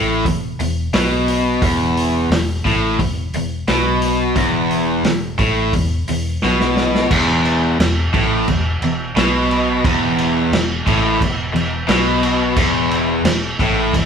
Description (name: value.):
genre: blues rock power trio and southern rock.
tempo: 88 BPM.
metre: 4/4.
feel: straight.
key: unclear.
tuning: A4 = 440 Hz.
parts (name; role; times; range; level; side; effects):
cranked stack guitar; riff; 0.0-14.1 s; E2 to B2; -16 LUFS; left 1 dB; overdrive.
vintage muted fingered electric bass; bass; 0.0-14.1 s; E1 to B1; -24 LUFS; right 1 dB; none.
vintage drum kit; drums; 0.3-14.1 s; crash cymbal, hi-hat, kick drum, snare drum; -20 LUFS; equal; none.
room: light reverb.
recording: band playing live in one room.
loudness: -15 LUFS.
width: side -7 dB against mid.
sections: 0.0-7.1 A section; 7.1-14.1 A section.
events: drum fill 6.4-7.1.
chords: 0.0 E5.